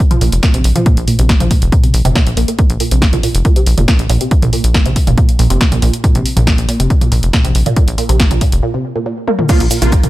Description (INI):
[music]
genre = driving peak-time techno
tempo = 139 BPM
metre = 4/4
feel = straight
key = unclear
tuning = A4 = 440 Hz
[part]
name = electronic kick drum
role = drums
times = 0.0-10.0 s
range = none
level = -13 LUFS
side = equal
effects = none
[part]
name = punchy analog drum machine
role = drums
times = 0.0-10.1 s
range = crash cymbal, hi-hat, shaker, snare drum, toms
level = -18 LUFS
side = equal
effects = sidechain pumping on hats, sidechain pumping on toms, sidechain pumping on cymbals, sidechain pumping on perc
[part]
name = resonant blip pluck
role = riff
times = 0.1-10.1 s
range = Bb2 to Bb3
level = -18 LUFS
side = right 1 dB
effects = phaser, sidechain pumping, tape echo
[part]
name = tight sequencer bass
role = bass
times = 0.2-10.1 s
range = F1 to Bb1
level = -14 LUFS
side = equal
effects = tube saturation, sidechain pumping
[part]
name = rave stab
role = stabs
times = 9.5-9.9 s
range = F3 to F4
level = -18 LUFS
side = right 3 dB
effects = chorus, built-in reverb, sidechain pumping, dub echo
[part]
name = ethereal airy pad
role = texture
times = 9.7-10.1 s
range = F4 to Bb4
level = -26 LUFS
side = right 5 dB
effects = ensemble chorus, built-in reverb, sidechain pumping
[sound]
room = digital ambience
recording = none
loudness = -10 LUFS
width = side -16 dB against mid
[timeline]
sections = 0.0-9.5 A section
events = break 8.6-9.5; drum fill 9.3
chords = 0.0 Bb5